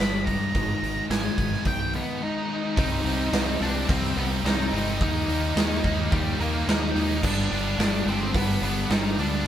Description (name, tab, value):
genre	quiet-loud alternative rock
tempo	108 BPM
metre	4/4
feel	straight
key	C harmonic minor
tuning	A4 = 441 Hz
part	octave-fuzz lead guitar	melody	0.0-9.5 s	G3 to B5	-30 LUFS	left 1 dB	distortion
part	scooped high-gain guitar	riff	0.0-9.5 s	G2 to Eb4	-33 LUFS	right 8 dB	distortion
part	thick fuzz guitar	riff	0.0-9.4 s	G2 to Eb4	-32 LUFS	left 4 dB	distortion
part	growling fingered electric bass	bass	0.0-9.4 s	G1 to Eb2	-29 LUFS	equal	overdrive
part	huge arena drum kit	drums	0.0-9.3 s	crash cymbal, hi-hat, kick drum, snare drum	-26 LUFS	equal	none
part	heavy high-gain guitar	riff	2.8-9.5 s	G2 to Eb4	-32 LUFS	right 1 dB	distortion
room	light reverb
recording	band playing live in one room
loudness	-22 LUFS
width	side -10 dB against mid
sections	0.0-2.8 A section; 2.8-9.5 B section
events	lead electric guitar solo 0.0-2.8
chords	0.0 G; 0.5 Abm; 2.8 Cm; 5.0 Eb; 7.2 G